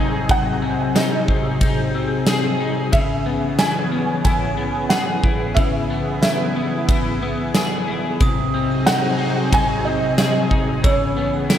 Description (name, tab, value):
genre	dream pop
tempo	91 BPM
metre	4/4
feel	straight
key	C# minor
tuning	A4 = 444 Hz
part	felt-muted upright piano	melody	0.0-11.6 s	C#5 to G#5	-24 LUFS	right 2 dB	ensemble chorus, digital delay
part	lush unison pad	sustained chords	0.0-11.6 s	B#2 to G#4	-24 LUFS	equal	chorus, phaser
part	electric guitar at the edge of break-up	arpeggios	0.0-11.6 s	B#2 to G#4	-23 LUFS	left 3 dB	analog chorus, digital delay
part	huge arena drum kit	drums	0.3-11.6 s	kick drum, ride cymbal, snare drum, tambourine	-20 LUFS	equal	gated reverb
part	glockenspiel with brass mallets	texture	8.2-11.6 s	D#6 to E6	-31 LUFS	right 5 dB	digital delay
room	moderate lush hall reverb, RT60 1.9 s, small room ambience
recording	bright 1980s-style digital production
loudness	-17 LUFS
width	side -10 dB against mid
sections	0.0-11.6 A section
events	none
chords	0.0 G#7/B#; 2.9 C#m7; 8.2 G#7/B#; 10.8 C#m7